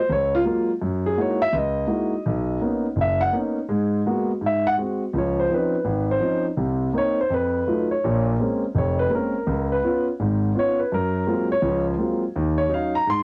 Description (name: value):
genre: solo jazz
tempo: 166 BPM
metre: 4/4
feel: swing 63% on 8ths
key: F# major, Db major from 5.1 s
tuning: A4 = 440 Hz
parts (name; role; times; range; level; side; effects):
- warm concert grand piano; solo; 0.0-13.2 s; F1 to C6; -22 LUFS; equal; cassette tape
room: moderate booth ambience, RT60 0.2 s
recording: home recording on cassette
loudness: -23 LUFS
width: mono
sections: 0.0-5.1 A section; 5.1-13.2 A section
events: grand piano solo 0.0-5.1, 5.1-13.2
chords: 0.0 F#maj9; 0.8 F#13; 2.3 Bmaj9; 3.7 G#m9; 4.4 G#7; 5.1 Dbmaj9; 6.6 Cm7; 7.3 F7b9; 8.0 Bbm9; 9.5 Db7; 10.9 Gbmaj9#11; 12.3 Ebm7